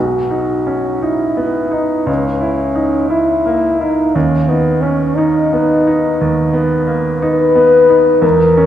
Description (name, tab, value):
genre	classical, romantic duo for French horn and grand piano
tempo	58 BPM (dotted quarters)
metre	12/8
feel	rubato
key	B major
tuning	A4 = 440 Hz
part	clear French horn	melody	0.0-8.7 s	B3 to B4	-13 LUFS	left 2 dB	none
part	bright grand piano	accompaniment	0.0-8.7 s	B1 to E4	-15 LUFS	right 2 dB	none
room	wet scoring stage reverb, RT60 2.1 s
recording	recorded in a church or concert hall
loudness	-11 LUFS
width	side -10 dB against mid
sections	0.0-8.7 A section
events	none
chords	0.0 B; 2.1 C#m69; 4.2 B/D#